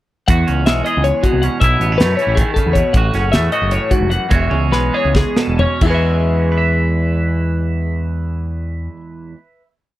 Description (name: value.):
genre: math rock and midwest emo.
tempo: 262-317 BPM (eighths).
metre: 7/8.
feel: straight.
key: E major.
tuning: A4 = 440 Hz.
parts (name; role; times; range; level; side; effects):
twangy electric guitar; accompaniment; 0.3-9.7 s; E2 to E5; -20 LUFS; right 5 dB; lush chorus.
twelve-string electric guitar; arpeggios; 0.3-9.0 s; E4 to F#5; -20 LUFS; left 5 dB; none.
growling picked electric bass; bass; 0.3-8.9 s; E1 to F#2; -17 LUFS; equal; overdrive.
modern studio drum kit; drums; 0.3-5.9 s; crash cymbal, hi-hat, kick drum, snare drum, toms; -17 LUFS; equal; none.
room: little or no reverb.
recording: dry, close 1970s-style studio recording.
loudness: -13 LUFS.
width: side -15 dB against mid.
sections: 0.3-5.8 A section; 5.8-9.0 final chord.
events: slowing down 2.9-5.8; drum fill 4.5-5.8.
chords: 0.3 E69; 1.6 B9sus4; 2.9 A6; 4.3 E69.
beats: | 0.28 0.47 0.66 0.85 1.04 1.23 1.42 | 1.61 1.80 1.99 2.18 2.37 2.56 2.75 | 2.94 3.14 3.33 3.52 3.72 3.92 4.12 | 4.32 4.52 4.73 4.94 5.15 5.37 5.59 | 5.82 6.05 6.28 6.51 6.74 6.97 7.20 | 7.42 7.66 7.88 8.11 8.34 8.57 8.80.